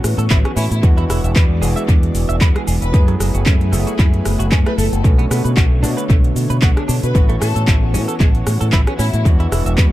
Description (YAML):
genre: nu-disco, nu disco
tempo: 114 BPM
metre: 4/4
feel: swing 54% on 16ths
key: B dorian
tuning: A4 = 440 Hz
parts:
  - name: overdriven tine electric piano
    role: accompaniment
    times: 0.0-9.9 s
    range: D3 to C#5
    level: -25 LUFS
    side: equal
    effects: vintage 12-bit sampler grit, sidechain pumping, analog delay
  - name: lush unison pad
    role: sustained chords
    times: 0.0-9.9 s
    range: D3 to D5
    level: -27 LUFS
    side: left 1 dB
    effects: chorus, sidechain pumping
  - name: fingered electric bass with an envelope filter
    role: bass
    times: 0.0-9.9 s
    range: E1 to B2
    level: -17 LUFS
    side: equal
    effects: none
  - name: pop drum kit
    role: drums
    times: 0.0-9.9 s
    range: handclaps, hi-hat, rim click, shaker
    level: -24 LUFS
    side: equal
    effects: overdrive, analog delay
  - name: direct-recorded clean electric guitar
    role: riff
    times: 0.2-9.9 s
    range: E3 to E5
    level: -28 LUFS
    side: right 4 dB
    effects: analog chorus, analog delay
  - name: electronic kick drum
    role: drums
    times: 0.3-9.9 s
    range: none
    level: -13 LUFS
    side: equal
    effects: overdrive
  - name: warm studio violin section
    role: melody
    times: 0.6-9.2 s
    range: E4 to B4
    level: -28 LUFS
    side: left 2 dB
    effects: dub echo
room: little or no reverb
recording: echo-heavy mix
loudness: -13 LUFS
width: side -15 dB against mid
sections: 0.0-9.9 A section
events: none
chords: 0.0 A69; 0.8 E9; 2.9 F#m11; 5.0 Bm9; 7.1 A69; 9.3 E9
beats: 0.31 | 0.83 1.36 1.89 2.41 | 2.94 3.46 3.99 4.52 | 5.04 5.57 6.10 6.62 | 7.15 7.67 8.20 8.73 | 9.25 9.78